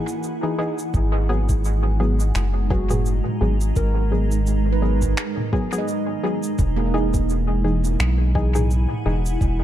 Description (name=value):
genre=ambient dub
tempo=85 BPM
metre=4/4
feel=swing 56% on 16ths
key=G# minor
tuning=A4 = 439 Hz
part: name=granular cloud pad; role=sustained chords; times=0.0-9.6 s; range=G#3 to A#5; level=-27 LUFS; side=right 2 dB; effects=built-in reverb
part: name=handpan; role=arpeggios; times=0.0-9.0 s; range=A#3 to D#5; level=-32 LUFS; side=right 4 dB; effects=dub echo
part: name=filtered dub chord stab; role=stabs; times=0.0-9.2 s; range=E3 to G#4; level=-27 LUFS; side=left 1 dB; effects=chorus, dub echo
part: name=organic electronic drum kit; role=drums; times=0.1-9.6 s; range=finger snaps, shaker, toms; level=-29 LUFS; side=right 1 dB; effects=dub echo
part: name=soft dub sub bass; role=bass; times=0.9-9.6 s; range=E1 to B1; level=-20 LUFS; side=equal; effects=none
part: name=electronic kick drum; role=drums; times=0.9-9.6 s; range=none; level=-23 LUFS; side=equal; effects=none
room=little or no reverb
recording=dark, warm production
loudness=-19 LUFS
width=side -12 dB against mid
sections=0.9-9.6 A section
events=none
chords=0.0 Emaj7; 0.9 G#m7; 6.6 Emaj7